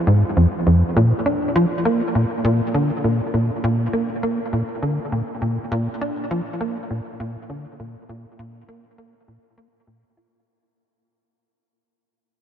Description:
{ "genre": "ambient", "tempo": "101 BPM", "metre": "4/4", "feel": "straight", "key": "unclear", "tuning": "A4 = 440 Hz", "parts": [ { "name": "tight sequencer bass", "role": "solo", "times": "0.1-10.4 s", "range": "F2 to F4", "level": "-19 LUFS", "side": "equal", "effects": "wide subtle chorus, tape echo" } ], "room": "wet huge ambient reverb, RT60 8.9 s", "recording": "dark, warm production", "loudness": "-18 LUFS", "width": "side -9 dB against mid", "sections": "1.0-10.5 A section", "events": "fade-out 1.0-10.5", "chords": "none", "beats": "0.37 | 0.96 1.56 2.15 2.75 | 3.34 3.93 4.53 5.12 | 5.72 6.31 6.90 7.50 | 8.09 8.69 9.28 9.88" }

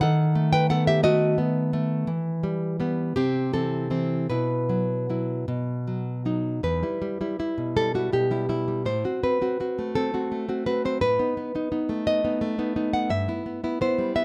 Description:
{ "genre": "romantic piece for solo classical guitar", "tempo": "50-60 BPM (dotted quarters)", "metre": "6/8", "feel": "rubato", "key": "E minor", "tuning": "A4 = 439 Hz", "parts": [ { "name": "nylon-string guitar", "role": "solo", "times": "0.0-14.2 s", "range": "E2 to G5", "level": "-25 LUFS", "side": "equal", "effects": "none" } ], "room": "light reverb", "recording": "close, detailed microphones", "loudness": "-25 LUFS", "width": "mono", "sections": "0.0-6.6 A section; 6.6-14.2 B section", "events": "none", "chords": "0.0 B7/D#; 2.1 Em; 3.2 Am/C; 4.3 Bsus4; 5.5 B; 6.6 Em; 8.9 F#dim/A; 11.0 B7/A; 13.1 Em/G", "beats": "| 0.03 1.04 | 2.09 3.16 | 4.30 5.48 | 6.64 7.76 | 8.86 9.95 | 11.01 12.07 | 13.11 14.17" }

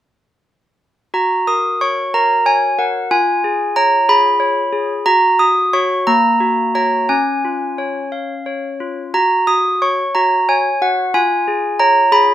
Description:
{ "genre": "classical, lullaby for handbells", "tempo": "60 BPM (dotted quarters)", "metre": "6/8", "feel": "rubato", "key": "F# major", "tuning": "A4 = 439 Hz", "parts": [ { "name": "handbells", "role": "solo", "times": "1.1-12.3 s", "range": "A#3 to D#6", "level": "-13 LUFS", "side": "equal", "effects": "none" } ], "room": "light reverb", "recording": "rough home demo mix", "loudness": "-13 LUFS", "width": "side -12 dB against mid", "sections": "1.1-12.3 A section", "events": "none", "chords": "1.1 F#; 3.1 C#7/E#; 5.1 F#5; 6.1 F#/A#; 7.1 C#; 9.1 F#5; 11.1 C#7/E#", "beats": "| 1.13 2.14 | 3.12 4.09 | 5.07 6.07 | 7.09 8.12 | 9.14 10.14 | 11.14 12.13" }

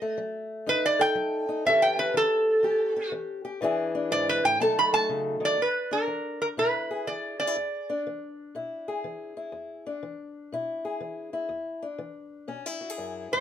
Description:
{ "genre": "acoustic country blues, solo or duo", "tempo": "122 BPM", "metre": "4/4", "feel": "swing 66% on 8ths", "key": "E mixolydian", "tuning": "A4 = 440 Hz", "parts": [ { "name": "metal-body resonator slide guitar", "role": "melody", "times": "0.0-8.0, 13.3-13.4 s", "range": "A4 to B5", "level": "-24 LUFS", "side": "right 1 dB", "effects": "none" }, { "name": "fingerpicked old ladder-braced acoustic guitar", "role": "accompaniment", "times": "0.0-13.4 s", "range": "E2 to A4", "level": "-30 LUFS", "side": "left 2 dB", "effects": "none" } ], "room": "moderate small room reverb, RT60 0.5 s", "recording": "none", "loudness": "-25 LUFS", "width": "side -10 dB against mid", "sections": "0.0-5.6 A section; 5.6-13.4 B section", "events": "resonator guitar played with a steel bar solo 0.0-5.6", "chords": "0.0 B7 (rootless); 1.7 A7; 3.6 E7; 4.6 B7; 5.6 E7", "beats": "0.19 0.68 1.17 | 1.66 2.15 2.64 3.13 | 3.62 4.11 4.60 5.09 | 5.58 6.08 6.57 7.06 | 7.56 8.05 8.54 9.04 | 9.53 10.03 10.52 11.02 | 11.51 12.00 12.50 12.99" }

